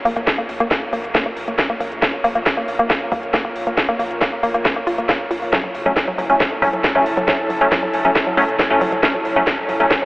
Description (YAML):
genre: driving peak-time techno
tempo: 137 BPM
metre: 4/4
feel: straight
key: Bb harmonic minor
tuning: A4 = 440 Hz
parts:
  - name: airy breathy pad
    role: texture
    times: 0.0-10.1 s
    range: E4 to Db5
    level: -25 LUFS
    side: equal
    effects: chorus, sidechain pumping
  - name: woody wave-folded pluck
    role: riff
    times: 0.1-10.1 s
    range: Gb3 to F4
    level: -22 LUFS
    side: equal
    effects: chorus, tube saturation, sidechain pumping, tape echo
  - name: warm sub bass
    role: bass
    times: 0.1-9.9 s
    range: Gb1 to Bb1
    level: -46 LUFS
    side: equal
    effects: overdrive, sidechain pumping, low-pass filter
  - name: techno drum kit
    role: drums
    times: 0.1-10.0 s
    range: hi-hat, snare drum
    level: -20 LUFS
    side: equal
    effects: overdrive, sidechain pumping on hats, studio reverb
  - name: electronic kick drum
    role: drums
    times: 0.3-10.0 s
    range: none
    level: -22 LUFS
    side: equal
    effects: studio reverb
  - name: wavetable chord stab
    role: stabs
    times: 5.5-9.9 s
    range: Gb3 to Db4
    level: -18 LUFS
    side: equal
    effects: phaser, cassette tape, sidechain pumping, tape echo
  - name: riser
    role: sound effects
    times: 9.8-10.1 s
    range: none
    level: barely audible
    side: none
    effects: none
room: wet huge ambient reverb, RT60 7.9 s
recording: dreamy mix soaked in reverb, telephone sound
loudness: -16 LUFS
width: side -23 dB against mid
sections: 0.0-10.1 A section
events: fade-in on analog synth pad 0.0-10.1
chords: 0.0 Bbm; 5.5 Gbm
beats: | 0.27 0.71 1.15 1.59 | 2.02 2.46 2.90 3.34 | 3.78 4.21 4.65 5.09 | 5.53 5.96 6.40 6.84 | 7.28 7.72 8.15 8.59 | 9.03 9.47 9.91